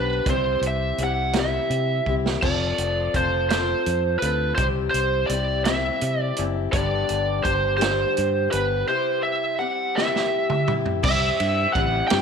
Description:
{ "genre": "folk rock and heartland rock", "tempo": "56 BPM (dotted quarters)", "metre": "6/8", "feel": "straight", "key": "unclear", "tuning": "A4 = 440 Hz", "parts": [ { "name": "lead guitar through a small cranked amp", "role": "melody", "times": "0.0-12.2 s", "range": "B4 to G5", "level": "-23 LUFS", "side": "right 3 dB", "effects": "overdrive, slapback echo" }, { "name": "picked acoustic archtop guitar", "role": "accompaniment", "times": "0.0-12.2 s", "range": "G2 to A4", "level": "-27 LUFS", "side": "left 13 dB", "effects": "none" }, { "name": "fingered electric bass", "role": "bass", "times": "0.0-12.2 s", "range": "F1 to C3", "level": "-26 LUFS", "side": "equal", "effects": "transformer saturation" }, { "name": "vintage drum kit", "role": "drums", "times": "0.3-12.2 s", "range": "crash cymbal, hi-hat, kick drum, ride cymbal, snare drum, toms", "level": "-26 LUFS", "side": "right 4 dB", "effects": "none" } ], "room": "light reverb, small room reverb", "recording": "1960s-style stereo", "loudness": "-20 LUFS", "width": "side -6 dB against mid", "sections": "0.0-2.4 A section; 2.4-11.0 A section; 11.0-12.2 B section", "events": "drum fill 2.1-2.4, 10.0-11.0", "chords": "0.3 C; 2.4 F; 4.6 C; 6.7 G; 8.9 C" }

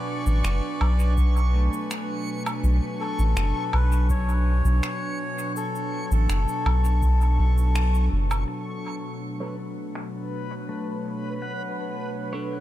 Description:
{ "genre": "ambient dub", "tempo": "82 BPM", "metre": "4/4", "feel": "straight", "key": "B dorian", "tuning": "A4 = 440 Hz", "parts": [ { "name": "melodica", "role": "melody", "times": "0.0-8.1 s", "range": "A4 to D5", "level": "-32 LUFS", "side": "left 3 dB", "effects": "dub echo" }, { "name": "airy breathy pad", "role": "sustained chords", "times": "0.0-12.6 s", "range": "B2 to G#5", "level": "-32 LUFS", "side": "equal", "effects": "chorus" }, { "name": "pedal steel guitar", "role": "arpeggios", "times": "0.0-3.4, 8.5-12.6 s", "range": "A3 to F#5", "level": "-38 LUFS", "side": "left 1 dB", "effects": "low-pass filter, dub echo" }, { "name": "backwards swelling texture", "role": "texture", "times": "0.0-12.6 s", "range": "B4 to C#6", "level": "-38 LUFS", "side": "equal", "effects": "built-in reverb" }, { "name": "soft dub sub bass", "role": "bass", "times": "0.3-8.4 s", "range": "F#1 to B1", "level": "-20 LUFS", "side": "equal", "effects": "tube saturation" }, { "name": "electronic cabasa, finger snaps and woodblock", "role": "drums", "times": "0.3-10.1 s", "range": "none", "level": "-35 LUFS", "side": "right 2 dB", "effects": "overdrive, low-pass filter on snare, low-pass filter on perc, low-pass filter on room, dub echo" }, { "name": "electronic kick drum", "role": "drums", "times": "1.2-7.2 s", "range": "none", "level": "-27 LUFS", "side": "equal", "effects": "none" }, { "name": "clean electric guitar", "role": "stabs", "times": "9.4-12.6 s", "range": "D4 to C#5", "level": "-38 LUFS", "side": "right 4 dB", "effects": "low-pass filter, dub echo" } ], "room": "digital ambience", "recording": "echo-heavy mix", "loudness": "-22 LUFS", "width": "side -14 dB against mid", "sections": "0.0-8.5 A section; 8.5-12.6 B section", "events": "band accent 7.8-8.1; filter sweep on clean electric guitar 8.5-12.6; filter sweep on pedal steel guitar 8.5-12.6", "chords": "0.0 Bm9" }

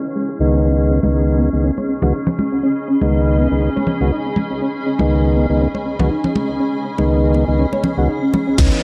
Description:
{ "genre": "deep house", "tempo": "121 BPM", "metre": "4/4", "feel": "swing 55% on 16ths", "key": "unclear", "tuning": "A4 = 436 Hz", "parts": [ { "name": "granular cloud pad", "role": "texture", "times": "0.0-8.8 s", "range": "C#4 to B5", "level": "-25 LUFS", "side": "equal", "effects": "built-in reverb, sidechain pumping" }, { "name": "soft round pluck", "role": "arpeggios", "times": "0.2-8.7 s", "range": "G#3 to C#5", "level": "-25 LUFS", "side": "equal", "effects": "lush chorus, sidechain pumping, tape echo" }, { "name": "mellow tonewheel organ", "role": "stabs", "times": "0.4-8.8 s", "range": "C#2 to F#4", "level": "-19 LUFS", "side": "equal", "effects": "overdrive, chorus vibrato, slow rotary speaker, sidechain pumping, low-pass filter, tape echo" }, { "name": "congas and bongos", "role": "percussion", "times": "1.0-8.8 s", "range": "none", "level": "-24 LUFS", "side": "equal", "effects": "none" }, { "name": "organ-like FM bass", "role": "bass", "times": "8.6-8.7 s", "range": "C#2", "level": "-18 LUFS", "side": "equal", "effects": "tube saturation, sidechain pumping" }, { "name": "electronic kick drum", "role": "drums", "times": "8.6-8.7 s", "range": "none", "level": "-17 LUFS", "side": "equal", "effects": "none" }, { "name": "house drum kit", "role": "drums", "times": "8.6-8.7 s", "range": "crash cymbal, hi-hat", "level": "-27 LUFS", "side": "equal", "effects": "none" }, { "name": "shekere", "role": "percussion", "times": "8.6-8.7 s", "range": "none", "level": "-35 LUFS", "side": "equal", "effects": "none" }, { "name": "downlifter", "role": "sound effects", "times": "8.6-8.8 s", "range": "none", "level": "-28 LUFS", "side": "equal", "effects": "none" } ], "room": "moderate lush hall reverb, RT60 2.2 s", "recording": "low-pass filter", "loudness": "-17 LUFS", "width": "mono", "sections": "0.0-8.6 A section", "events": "filter sweep on synth arpeggio sound 0.0-8.6; filter sweep 0.0-8.6", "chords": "0.0 C#m9; 0.6 G#m/C#" }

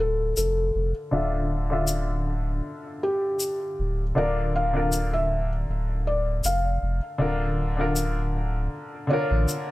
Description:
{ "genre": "trip hop", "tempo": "79 BPM", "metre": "4/4", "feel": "swing 54% on 16ths", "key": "unclear", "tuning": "A4 = 440 Hz", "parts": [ { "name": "felt-muted upright piano", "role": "melody", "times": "0.0-9.7 s", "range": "G4 to F5", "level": "-28 LUFS", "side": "left 1 dB", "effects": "tape echo" }, { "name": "clear upright piano", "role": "accompaniment", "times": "0.0-9.7 s", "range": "D3 to E5", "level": "-28 LUFS", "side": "left 1 dB", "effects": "harmonic tremolo, vintage 12-bit sampler grit, low-pass filter" }, { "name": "warm sub bass", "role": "bass", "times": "0.0-9.5 s", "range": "D1 to A1", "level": "-26 LUFS", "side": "equal", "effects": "none" }, { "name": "tube shaker", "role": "percussion", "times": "0.4-9.6 s", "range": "none", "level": "-30 LUFS", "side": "left 3 dB", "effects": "none" } ], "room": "light reverb, small room reverb", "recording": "none", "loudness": "-23 LUFS", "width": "side -18 dB against mid", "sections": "0.0-9.7 A section", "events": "filter sweep on upright piano 0.0-9.7", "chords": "0.0 Dmadd9; 4.2 Bb/D" }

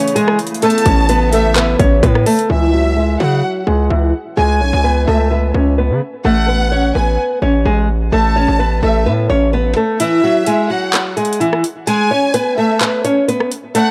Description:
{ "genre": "hip hop, trap", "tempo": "128 BPM", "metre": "4/4", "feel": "half-time", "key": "C# minor", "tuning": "A4 = 444 Hz", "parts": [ { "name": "nylon-string guitar", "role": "melody", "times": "0.0-13.9 s", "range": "E3 to C#5", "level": "-17 LUFS", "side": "equal", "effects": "low-pass filter, analog delay" }, { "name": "hollow soft pad", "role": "sustained chords", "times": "0.0-2.5 s", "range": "C#3 to E4", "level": "-28 LUFS", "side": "equal", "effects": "chorus" }, { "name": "trap drum kit", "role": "drums", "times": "0.0-2.5, 10.0-13.9 s", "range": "handclaps, hi-hat, kick drum, rim click", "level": "-20 LUFS", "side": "equal", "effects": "overdrive" }, { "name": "warm studio violin section", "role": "second line", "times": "0.6-13.9 s", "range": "E5 to A5", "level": "-23 LUFS", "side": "equal", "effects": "analog delay" }, { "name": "distorted 808-style bass", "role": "bass", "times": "0.9-9.7 s", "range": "A1 to C#3", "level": "-17 LUFS", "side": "equal", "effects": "distortion" } ], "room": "digital ambience", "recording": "dry, gritty hardware recording", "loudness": "-14 LUFS", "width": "mono", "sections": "0.0-2.5 A section; 2.5-10.0 B section; 10.0-13.9 C section", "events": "filter sweep on nylon-string guitar 2.5-10.0; kick muted 10.0-13.9", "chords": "0.0 A; 2.5 C#m; 6.2 A; 10.0 C#m" }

